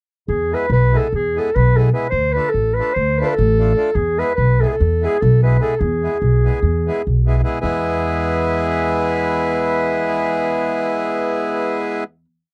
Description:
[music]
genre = balkan folk, Balkan wedding band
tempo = 294 BPM (eighths)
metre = 9/8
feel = straight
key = E major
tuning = A4 = 439 Hz
[part]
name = mellow clarinet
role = melody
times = 0.3-12.0 s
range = G#4 to C5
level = -22 LUFS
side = equal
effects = none
[part]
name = upright bass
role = bass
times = 0.3-12.2 s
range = A1 to E2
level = -20 LUFS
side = equal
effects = none
[part]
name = accordion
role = accompaniment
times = 0.5-12.0 s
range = G#3 to A4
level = -23 LUFS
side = equal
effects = none
[sound]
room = little or no reverb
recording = dry, close 1970s-style studio recording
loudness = -18 LUFS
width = mono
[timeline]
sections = 0.3-7.6 A section; 7.6-11.3 final chord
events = none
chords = 0.3 E; 2.1 Dm; 3.9 E

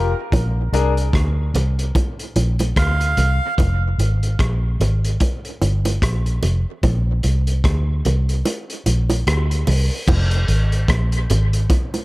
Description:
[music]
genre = dub reggae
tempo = 74 BPM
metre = 4/4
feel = swing 58% on 16ths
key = F dorian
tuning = A4 = 441 Hz
[part]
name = warm upright piano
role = stabs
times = 0.0-0.9 s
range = D4 to Bb4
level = -24 LUFS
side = left 6 dB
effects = dub echo
[part]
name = vintage muted fingered electric bass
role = bass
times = 0.0-11.7 s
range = F1 to D2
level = -18 LUFS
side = equal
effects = none
[part]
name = crunchy breakbeat drum kit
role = drums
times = 0.3-12.0 s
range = crash cymbal, hi-hat, kick drum, rim click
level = -22 LUFS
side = equal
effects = none
[part]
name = bongos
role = percussion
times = 0.3-12.0 s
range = none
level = -26 LUFS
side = right 3 dB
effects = dub echo
[part]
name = melodica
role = melody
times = 2.8-3.5 s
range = F5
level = -26 LUFS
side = right 3 dB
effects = dub echo
[sound]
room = studio reverb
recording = none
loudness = -16 LUFS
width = side -20 dB against mid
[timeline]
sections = 0.0-10.1 A section; 10.1-12.0 B section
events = kick muted 8.5-10.1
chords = 0.3 Bb; 3.6 Fm; 5.2 Gm7; 6.8 Bb; 10.1 Fm

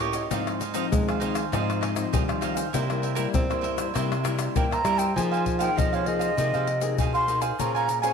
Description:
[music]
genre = samba and choro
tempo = 99 BPM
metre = 4/4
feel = straight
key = F minor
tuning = A4 = 439 Hz
[part]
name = cavaquinho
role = accompaniment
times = 0.0-8.1 s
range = Eb4 to Ab5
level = -30 LUFS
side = right 9 dB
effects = none
[part]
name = nylon-string guitar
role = accompaniment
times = 0.0-8.1 s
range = G2 to C5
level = -31 LUFS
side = left 8 dB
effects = none
[part]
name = nylon-string guitar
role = bass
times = 0.0-8.1 s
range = Ab2 to C4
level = -29 LUFS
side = right 1 dB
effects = none
[part]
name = egg shaker, pandeiro, surdo and tamborim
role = percussion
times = 0.1-8.1 s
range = none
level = -29 LUFS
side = left 3 dB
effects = none
[part]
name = breathy jazz flute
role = melody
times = 4.6-8.1 s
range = Db5 to C6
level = -26 LUFS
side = equal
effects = none
[sound]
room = wet echo chamber reverb, RT60 1.5 s, studio ambience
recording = 1960s-style stereo with parts hard left and right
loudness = -23 LUFS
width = side -6 dB against mid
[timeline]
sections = 0.0-5.2 A section; 5.2-8.1 B section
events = none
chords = 0.3 Ab6; 2.7 C7; 5.2 Fm7; 7.6 Bbm9

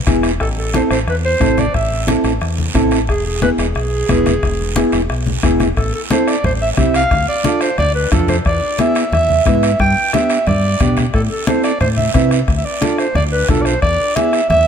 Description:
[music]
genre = latin, cumbia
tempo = 179 BPM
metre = 4/4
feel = straight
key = A minor from 5.8 s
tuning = A4 = 439 Hz
[part]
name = mellow electric guitar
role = accompaniment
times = 0.1-14.4 s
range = B3 to B4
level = -19 LUFS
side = right 2 dB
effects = none
[part]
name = deep dub fingered electric bass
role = bass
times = 0.1-14.7 s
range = E1 to C3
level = -19 LUFS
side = equal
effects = none
[part]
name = bombo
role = percussion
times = 0.1-14.7 s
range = none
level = -22 LUFS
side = left 2 dB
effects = none
[part]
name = congas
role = percussion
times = 0.1-14.7 s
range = none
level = -22 LUFS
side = left 3 dB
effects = none
[part]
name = guiro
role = percussion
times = 0.1-14.7 s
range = none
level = -27 LUFS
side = right 6 dB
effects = none
[part]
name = mellow clarinet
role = melody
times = 0.4-14.7 s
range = G#4 to G5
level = -18 LUFS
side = right 1 dB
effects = none
[sound]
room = light reverb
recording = none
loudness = -13 LUFS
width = side -7 dB against mid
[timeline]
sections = 0.0-5.8 A section; 5.8-14.7 B section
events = none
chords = 0.4 Am; 3.1 E; 5.8 Am; 7.1 Dm; 8.5 E7; 9.8 G; 11.1 Am; 12.5 Dm; 13.8 E7

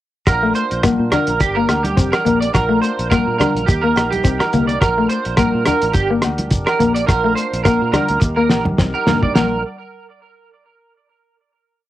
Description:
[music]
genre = highlife guitar band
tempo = 106 BPM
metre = 4/4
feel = swing 55% on 16ths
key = Bb major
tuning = A4 = 442 Hz
[part]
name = tonewheel organ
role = sustained chords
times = 0.3-9.6 s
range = D4 to Bb4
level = -29 LUFS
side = right 1 dB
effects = slow rotary speaker, cassette tape
[part]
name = electric guitar at the edge of break-up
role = arpeggios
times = 0.3-9.6 s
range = G4 to D5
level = -19 LUFS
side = right 4 dB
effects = ensemble chorus, cassette tape, tape echo
[part]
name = fingered electric bass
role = bass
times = 0.3-9.6 s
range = F1 to Bb2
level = -24 LUFS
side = equal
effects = none
[part]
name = cloth-damped thuddy drum kit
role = drums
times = 0.3-9.5 s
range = hi-hat, kick drum, rim click, snare drum, toms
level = -18 LUFS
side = equal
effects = none
[part]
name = agogo bells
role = percussion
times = 0.3-9.5 s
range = none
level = -30 LUFS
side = left 5 dB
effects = none
[part]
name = shekere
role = percussion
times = 0.3-9.6 s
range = none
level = -22 LUFS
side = equal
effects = none
[part]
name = electric guitar through a small old amp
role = accompaniment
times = 0.4-9.5 s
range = A3 to D4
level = -19 LUFS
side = left 4 dB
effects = cassette tape
[part]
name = congas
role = percussion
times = 0.8-9.6 s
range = none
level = -25 LUFS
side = right 2 dB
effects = none
[sound]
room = moderate small room reverb, RT60 0.5 s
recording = home recording on cassette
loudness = -14 LUFS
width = side -14 dB against mid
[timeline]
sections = 0.3-9.4 groove; 9.4-11.6 final chord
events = drum fill 8.2-9.4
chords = 0.3 Bb; 1.4 Gm; 2.5 Bb; 3.7 Eb; 4.8 Bb; 6.0 Gm; 7.1 Bb; 8.2 Eb; 9.4 Bb

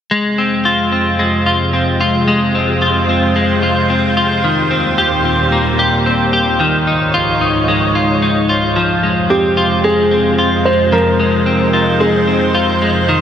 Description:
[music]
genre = dream pop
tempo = 111 BPM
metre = 4/4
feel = straight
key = F minor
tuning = A4 = 441 Hz
[part]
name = soft string machine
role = sustained chords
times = 0.4-13.2 s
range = Db2 to Db5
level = -16 LUFS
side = right 1 dB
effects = ensemble chorus
[part]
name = clean electric guitar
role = arpeggios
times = 0.1-13.2 s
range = Eb3 to G4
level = -14 LUFS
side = left 1 dB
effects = analog chorus, tape echo
[part]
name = felt-muted upright piano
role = melody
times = 9.3-12.8 s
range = G4 to C5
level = -15 LUFS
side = right 1 dB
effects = tape echo
[sound]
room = moderate huge ambient reverb, RT60 7.4 s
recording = none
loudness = -11 LUFS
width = side -9 dB against mid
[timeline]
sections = 0.1-8.8 A section; 8.8-13.2 B section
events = none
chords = 0.1 Fm; 4.4 Eb6; 6.6 Dbadd9; 8.8 Fm

